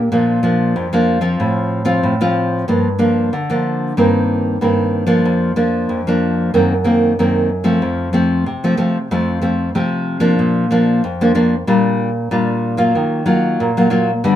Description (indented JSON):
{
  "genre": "samba",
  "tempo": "93 BPM",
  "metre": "4/4",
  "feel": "straight",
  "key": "Bb major",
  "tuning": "A4 = 440 Hz",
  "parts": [
    { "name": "nylon-string guitar", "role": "solo", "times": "0.0-14.4 s", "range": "F2 to F4", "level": "-14 LUFS", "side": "equal", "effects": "none" }
  ],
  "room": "moderate large studio reverb, RT60 0.9 s",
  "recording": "minimal, uncompressed stereo recording",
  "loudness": "-14 LUFS",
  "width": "side -11 dB against mid",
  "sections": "0.1-14.4 A section",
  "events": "none",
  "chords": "0.1 Bb; 1.4 F/A; 2.7 Gm7; 4.0 Eb6/G; 5.2 Bb/F; 6.5 Ebm6/Gb; 7.8 F; 10.4 Bb; 11.7 Gm7/Bb; 13.0 Ebmadd9",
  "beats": "| 0.12 0.76 1.40 2.04 | 2.68 3.32 3.97 4.61 | 5.25 5.89 6.53 7.18 | 7.82 8.46 9.10 9.74 | 10.39 11.03 11.67 12.31 | 12.96 13.60 14.24"
}